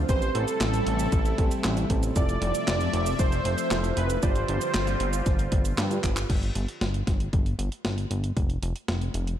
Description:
synthwave; 116 BPM; 4/4; straight; A4 = 440 Hz
phased analog pad; sustained chords; 0.0-6.3 s; C3 to E5; -33 LUFS; left 1 dB; phaser, chorus, sidechain pumping, shimmer reverb
dark baby grand piano; stabs; 0.0-6.3 s; C4 to D5; -35 LUFS; right 3 dB; tape echo, shimmer reverb
chorused synth bass; bass; 0.0-9.4 s; F1 to G2; -27 LUFS; equal; tube saturation
soft supersaw; melody; 0.1-5.7 s; A4 to D5; -30 LUFS; right 2 dB; digital delay, shimmer reverb
clean 12-bit digital drum machine; drums; 0.1-9.4 s; crash cymbal, handclaps, hi-hat, shaker, snare drum; -32 LUFS; equal
electronic kick drum; drums; 0.1-8.5 s; -25 LUFS; equal; overdrive
light reverb; dark, warm production; -23 LUFS; side -11 dB against mid
0.0-6.3 A section; 6.3-9.4 B section
drum fill 6.0
0.1 Am7; 2.2 Fmaj7; 4.2 G7sus4; 6.3 N.C.

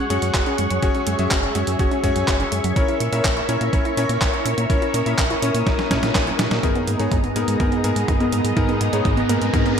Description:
italo disco; 124 BPM; 4/4; straight; G# minor; A4 = 440 Hz
string machine, full ensemble; sustained chords; 0.0-9.8 s; B3 to D#6; -24 LUFS; equal; ensemble chorus, vintage 12-bit sampler grit
wide unison pluck; arpeggios; 0.0-9.8 s; F#3 to A#4; -28 LUFS; right 4 dB; vintage 12-bit sampler grit, ping-pong delay
clear electric grand piano; stabs; 0.0-9.8 s; B3 to E5; -25 LUFS; left 4 dB; ping-pong delay
round analog bass; bass; 0.1-9.8 s; F#1 to A#2; -25 LUFS; equal
detuned 8-bit digital drum machine; drums; 0.1-9.8 s; handclaps, hi-hat, snare drum, toms; -25 LUFS; equal; gated reverb
electronic kick drum; drums; 0.3-9.6 s; -22 LUFS; equal
riser; sound effects; 8.3-9.8 s; -30 LUFS; right 3 dB
light reverb, digital ambience; bright 1980s-style digital production; -18 LUFS; side -7 dB against mid
0.0-6.6 A section; 6.6-9.8 B section
filter sweep on synth arpeggio sound 0.0-6.6; drum fill 5.7-6.6, 6.6-9.8; riser 8.3-9.8
0.0 F#sus2; 2.8 A#dim; 6.6 G#madd9

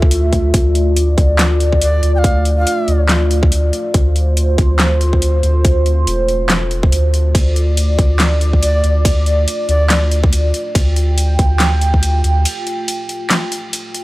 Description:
deep dubstep; 141 BPM; 4/4; swing 58% on 16ths, half-time; D minor; A4 = 444 Hz
dark analog pad; sustained chords; 0.0-14.0 s; A3 to G5; -20 LUFS; equal; chorus, phaser
soft dub sub bass; bass; 0.0-12.5 s; E1 to D2; -14 LUFS; equal; transformer saturation
electronic kick drum; drums; 0.0-12.0 s; -14 LUFS; equal; studio ambience
dubstep drum kit; drums; 0.1-14.0 s; handclaps, hi-hat, ride cymbal, snare drum; -19 LUFS; equal; studio ambience
breathy bright long shakuhachi; melody; 1.8-3.0, 8.6-10.0 s; D5 to G5; -23 LUFS; right 1 dB; dub echo
little or no reverb; dry, gritty hardware recording; -12 LUFS; side -18 dB against mid
0.0-14.0 A section
break 12.5-14.0
0.0 Dm

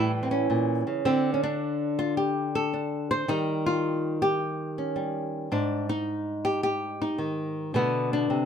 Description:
solo jazz; 108 BPM; 4/4; swing 67% on 8ths; A4 = 440 Hz
flamenco guitar; solo; 0.0-8.5 s; Ab2 to C5; -25 LUFS; equal
light reverb; minimal, uncompressed stereo recording; -25 LUFS; side -7 dB against mid
0.0-8.5 A section
0.0 A7b9; 1.1 N.C.; 3.3 Eb9; 5.5 Ab5; 7.7 Bm7

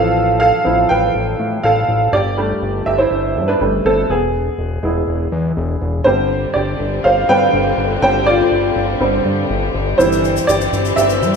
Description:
piano-driven pop; 122 BPM; 4/4; straight; A4 = 439 Hz
clear upright piano; accompaniment; 0.0-11.4 s; D3 to G5; -15 LUFS; right 1 dB
fat analog bass; bass; 0.0-11.4 s; E1 to A2; -20 LUFS; left 1 dB
rich studio string section; sustained chords; 6.1-11.4 s; D3 to C4; -21 LUFS; left 5 dB
tube shaker; percussion; 10.0-11.3 s; -28 LUFS; left 9 dB
moderate large studio reverb, RT60 1.2 s; band playing live in one room; -13 LUFS; side -6 dB against mid
0.0-6.1 A section; 6.1-11.4 B section
upright piano solo 0.0-6.1, 6.1-11.4
0.0 Fmaj9#11/A; 2.1 Gsus2; 4.1 E; 6.1 Gsus4; 10.0 C/G

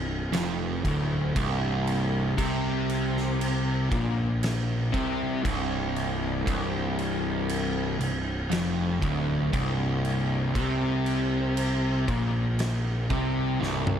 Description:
stoner and doom metal; 59 BPM; 4/4; straight; A4 = 439 Hz
fuzz guitar; riff; 0.0-14.0 s; C2 to C3; -26 LUFS; equal; distortion
fuzz picked electric bass; bass; 0.0-14.0 s; C1 to C2; -32 LUFS; equal; overdrive
oversized low-tuned drum kit; drums; 0.3-14.0 s; crash cymbal, kick drum, snare drum, toms; -32 LUFS; equal
light reverb; dark, warm production; -24 LUFS; side -8 dB against mid
0.0-14.0 A section
drum fill 13.6-14.0

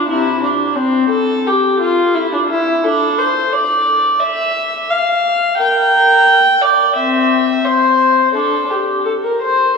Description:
classical, baroque-style suite movement for unaccompanied viola; 87 BPM; 4/4; rubato; A4 = 439 Hz
dark viola; solo; 0.0-9.8 s; C3 to G5; -12 LUFS; left 1 dB
wet church reverb, RT60 3.7 s; small room reverb; -12 LUFS; side -5 dB against mid
0.0-9.8 A section

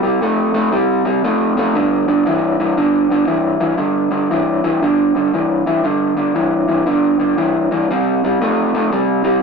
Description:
blues; 117 BPM; 4/4; swing 64% on 8ths; A4 = 438 Hz
electric guitar through a small old amp; solo; 0.0-9.4 s; G2 to A3; -14 LUFS; equal
moderate stone room reverb, RT60 1.1 s; rough rehearsal-room recording, tube saturation; -14 LUFS; side -5 dB against mid
0.0-5.8 A section; 5.8-9.4 B section
0.0 C5; 1.7 G5; 7.9 C5

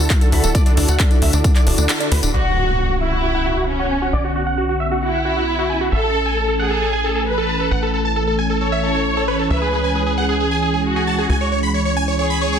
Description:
uplifting trance; 134 BPM; 4/4; straight; B dorian; A4 = 442 Hz
big supersaw lead; melody; 0.0-12.6 s; D4 to B5; -22 LUFS; right 1 dB; phaser, sidechain pumping, low-pass filter, ping-pong delay
lush unison pad; sustained chords; 0.0-12.6 s; D3 to A4; -24 LUFS; right 1 dB; chorus, sidechain pumping
tight sequencer bass; bass; 0.0-12.6 s; D1 to D2; -22 LUFS; equal; sidechain pumping
big-room dance drum kit; drums; 0.1-2.3 s; handclaps, hi-hat, tambourine; -22 LUFS; left 1 dB; sidechain pumping on hats, sidechain pumping on perc
electronic kick drum; drums; 0.1-1.5 s; -15 LUFS; equal
warm studio violin section; second line; 2.3-12.6 s; C#4 to C#5; -22 LUFS; equal; digital delay
impact; sound effects; 2.3-4.1 s; -23 LUFS; equal
moderate digital room reverb, RT60 1.2 s; dense, heavily limited modern master; -16 LUFS; side -8 dB against mid
0.0-2.3 A section; 2.3-12.6 B section
break 1.9-2.3; band accent 1.9; impact 2.3-4.1; filter sweep on supersaw synth 2.3-12.6
0.0 Dadd9; 2.3 Bmadd9; 5.9 A; 9.5 C#m

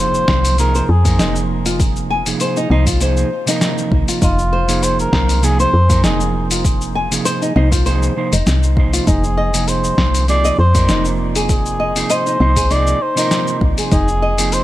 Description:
organic downtempo; 99 BPM; 4/4; swing 54% on 16ths; F minor; A4 = 441 Hz
trumpet with cup mute; melody; 0.0-14.6 s; F4 to D5; -20 LUFS; equal; tape echo
mellow electric guitar; accompaniment; 0.0-14.6 s; C3 to C5; -21 LUFS; right 5 dB; vintage 12-bit sampler grit, sidechain pumping, tape echo
flamenco guitar; arpeggios; 0.0-14.6 s; Eb4 to Ab5; -22 LUFS; left 2 dB; tape echo
woody FM bass; bass; 0.0-14.6 s; F1 to F2; -16 LUFS; equal; sidechain pumping
impact; sound effects; 0.0-1.8 s; barely audible
dusty soul sampler-style drum kit; drums; 0.1-14.6 s; cabasa, hi-hat, snare drum; -21 LUFS; left 2 dB
electronic kick drum; drums; 0.3-14.0 s; -18 LUFS; equal
little or no reverb; -13 LUFS; side -15 dB against mid
0.0-14.6 A section
impact 0.0-1.8
0.0 Fm7

